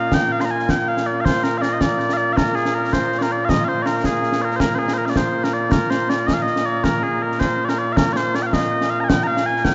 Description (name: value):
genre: scottish traditional, Scottish pipe music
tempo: 107 BPM (dotted quarters)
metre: 6/8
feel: straight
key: Bb mixolydian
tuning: A4 = 436 Hz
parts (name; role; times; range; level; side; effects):
- mellow small bagpipes; melody; 0.0-9.7 s; Bb2 to C6; -21 LUFS; equal; none
- concert snare drum and concert bass drum; drums; 0.1-9.7 s; none; -24 LUFS; equal; none
room: wet cathedral reverb, RT60 4.8 s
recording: in a vast, echoing space, nothing above 7.7 kHz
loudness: -20 LUFS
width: mono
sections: 0.0-4.6 A section; 4.6-9.7 A section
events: none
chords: none